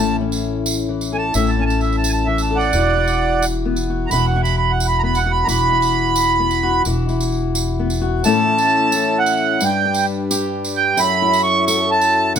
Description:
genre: acoustic folk duo or small band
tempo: 131 BPM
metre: 3/4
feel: straight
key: A mixolydian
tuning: A4 = 440 Hz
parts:
  - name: accordion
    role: melody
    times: 0.0-12.4 s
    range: D5 to C#6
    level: -17 LUFS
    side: right 4 dB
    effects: none
  - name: fingerpicked steel-string acoustic guitar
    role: accompaniment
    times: 0.0-12.4 s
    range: F#2 to A4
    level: -21 LUFS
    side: left 6 dB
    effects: none
  - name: upright bass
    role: bass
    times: 0.0-8.2 s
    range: E1 to A1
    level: -21 LUFS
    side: equal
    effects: none
  - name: tambourine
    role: percussion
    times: 0.3-12.4 s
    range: none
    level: -26 LUFS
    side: right 4 dB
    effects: none
  - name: pedal harmonium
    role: sustained chords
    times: 8.2-12.4 s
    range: D3 to B4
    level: -25 LUFS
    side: equal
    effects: none
room: light reverb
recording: close, detailed microphones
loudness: -15 LUFS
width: side -8 dB against mid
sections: 0.0-8.2 A section; 8.2-12.4 B section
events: accordion solo 0.0-8.2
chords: 0.0 A; 2.7 Esus2; 8.2 A; 9.6 G; 11.0 F#m7

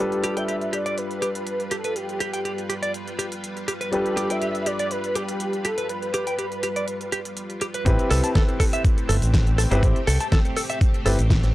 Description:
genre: nu-disco, nu disco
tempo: 122 BPM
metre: 4/4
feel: straight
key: A minor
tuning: A4 = 439 Hz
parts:
  - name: wide unison lead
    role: melody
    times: 0.0-7.3 s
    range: G4 to E5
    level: -28 LUFS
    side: equal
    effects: vintage 12-bit sampler grit, tape echo
  - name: clear grand piano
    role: accompaniment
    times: 0.0-11.2 s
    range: G3 to C5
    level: -29 LUFS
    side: left 1 dB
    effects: vintage 12-bit sampler grit, sidechain pumping, tape echo
  - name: string machine, full ensemble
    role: sustained chords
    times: 0.0-11.5 s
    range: G3 to B4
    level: -34 LUFS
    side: equal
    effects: ensemble chorus, sidechain pumping
  - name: pop drum kit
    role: drums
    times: 0.1-11.5 s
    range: hi-hat, shaker, snare drum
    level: -30 LUFS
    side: equal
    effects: none
  - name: direct-recorded clean electric guitar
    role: riff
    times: 0.2-11.1 s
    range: G4 to A5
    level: -28 LUFS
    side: right 1 dB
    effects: wide subtle chorus, tape echo
  - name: fingered electric bass with an envelope filter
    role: bass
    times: 7.9-11.5 s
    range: G1 to C2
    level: -20 LUFS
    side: equal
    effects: none
  - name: electronic kick drum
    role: drums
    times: 7.9-11.4 s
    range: none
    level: -19 LUFS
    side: equal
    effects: overdrive
room: little or no reverb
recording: dry, gritty hardware recording, cassette tape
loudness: -21 LUFS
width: side -16 dB against mid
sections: 0.0-7.9 A section; 7.9-11.5 B section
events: drop 7.9-11.5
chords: 0.0 G7; 7.9 Am7

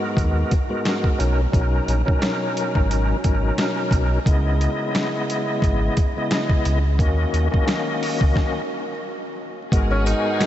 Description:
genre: hip hop, boom-bap hip-hop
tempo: 88 BPM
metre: 4/4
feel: swing 56% on 16ths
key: G# minor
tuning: A4 = 441 Hz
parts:
  - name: bright tonewheel organ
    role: accompaniment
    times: 0.0-10.5 s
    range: G#2 to D#5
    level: -23 LUFS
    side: left 1 dB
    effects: overdrive, chorus vibrato, fast rotary speaker, high-pass filter, low-pass filter
  - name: sub bass with octave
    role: bass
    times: 0.2-10.1 s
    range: G#1 to D#2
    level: -20 LUFS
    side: equal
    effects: none
  - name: boom bap sampler-style drum kit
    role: drums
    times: 0.2-10.5 s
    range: hi-hat, kick drum, snare drum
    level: -22 LUFS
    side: equal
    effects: none
  - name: warm studio string section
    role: sustained chords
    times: 9.7-10.5 s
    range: G#4 to G#5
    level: -29 LUFS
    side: left 2 dB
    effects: high-pass filter, low-pass filter
  - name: warm tenor saxophone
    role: melody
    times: 9.9-10.5 s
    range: C#4 to D#4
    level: -23 LUFS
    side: right 1 dB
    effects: high-pass filter, low-pass filter, ping-pong delay
  - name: tambourine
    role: percussion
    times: 10.1-10.2 s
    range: none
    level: -42 LUFS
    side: right 14 dB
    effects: none
room: moderate huge ambient reverb, RT60 6.7 s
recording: dreamy mix soaked in reverb, vinyl crackle, nothing above 7.9 kHz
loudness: -18 LUFS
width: side -12 dB against mid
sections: 0.0-9.7 A section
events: stop 8.4-9.7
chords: 0.0 G#m7; 1.2 Bmaj9; 4.3 C#m7; 7.0 D#m7; 9.7 G#m7

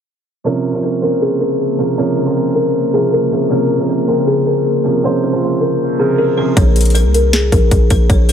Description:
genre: hip hop, trap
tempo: 157 BPM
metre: 4/4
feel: half-time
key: Bb minor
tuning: A4 = 439 Hz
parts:
  - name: dark concert grand piano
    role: accompaniment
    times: 0.4-6.6 s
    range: C3 to C5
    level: -17 LUFS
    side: right 4 dB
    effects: low-pass filter, analog delay
  - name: buzzing kalimba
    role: melody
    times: 0.5-8.3 s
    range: Ab4 to Db5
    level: -16 LUFS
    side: left 3 dB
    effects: low-pass filter, analog delay
  - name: ethereal airy pad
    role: sustained chords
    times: 1.0-6.5 s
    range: Db3 to Bb4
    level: -22 LUFS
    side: equal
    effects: ensemble chorus, built-in reverb
  - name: distorted 808-style bass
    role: bass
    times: 6.6-8.3 s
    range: Bb1 to C2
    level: -12 LUFS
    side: equal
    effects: distortion
  - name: trap drum kit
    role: drums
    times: 6.6-8.3 s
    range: hi-hat, kick drum, snare drum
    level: -14 LUFS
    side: equal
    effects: overdrive
room: little or no reverb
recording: echo-heavy mix, low-pass filter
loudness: -12 LUFS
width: side -8 dB against mid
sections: 0.5-6.6 A section; 6.6-8.3 B section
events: filter sweep 0.5-6.6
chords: 0.5 Bbmadd9

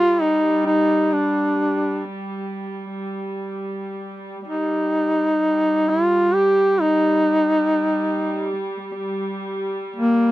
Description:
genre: caucasian folk, Caucasian lament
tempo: free time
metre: none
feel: none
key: G minor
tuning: A4 = 440 Hz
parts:
  - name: warm duduk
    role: melody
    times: 0.0-10.3 s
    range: Bb3 to G4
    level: -17 LUFS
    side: equal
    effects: none
  - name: warm studio string section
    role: drone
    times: 0.0-10.3 s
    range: G3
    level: -27 LUFS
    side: right 1 dB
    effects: none
room: light reverb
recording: dry, close 1970s-style studio recording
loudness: -18 LUFS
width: side -16 dB against mid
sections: 0.0-10.3 A section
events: none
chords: none

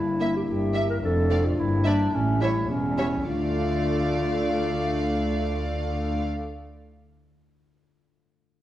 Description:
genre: cinematic, playful, whimsical film cue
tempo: 108 BPM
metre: 2/4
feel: straight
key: D minor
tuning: A4 = 440 Hz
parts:
  - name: mellow clarinet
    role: second line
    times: 0.0-6.2 s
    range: C#4 to Bb4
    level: -28 LUFS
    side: equal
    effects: none
  - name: mellow French horn section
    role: sustained chords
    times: 0.0-6.3 s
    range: G3 to E4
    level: -32 LUFS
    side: left 2 dB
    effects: none
  - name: concert harp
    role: arpeggios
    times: 0.0-7.2 s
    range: F2 to D5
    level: -35 LUFS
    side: left 6 dB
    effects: none
  - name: dark studio cello section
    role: bass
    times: 0.0-6.3 s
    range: E2 to D3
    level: -31 LUFS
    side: right 1 dB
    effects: none
  - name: dark studio double bass section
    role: bass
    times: 0.0-6.3 s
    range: E1 to D2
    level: -29 LUFS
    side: right 1 dB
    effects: none
  - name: warm studio violin section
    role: melody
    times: 0.2-6.2 s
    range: E5 to F5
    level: -34 LUFS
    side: left 2 dB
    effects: none
  - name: warm studio violin section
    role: second line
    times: 0.2-6.3 s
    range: C#5 to E5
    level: -35 LUFS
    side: right 2 dB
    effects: none
  - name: warm studio viola section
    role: accompaniment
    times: 0.2-6.2 s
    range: G3 to Bb3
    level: -34 LUFS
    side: left 1 dB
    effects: none
room: wet stone room reverb, RT60 1.4 s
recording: worn, warbling old tape, cassette tape, warbly pitch drift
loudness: -22 LUFS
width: side -13 dB against mid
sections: 0.0-3.3 A section; 3.3-5.5 B section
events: none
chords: 0.0 Edim/G; 1.0 Dm/F; 1.6 Em7b5/G; 2.1 A7; 3.3 Dm

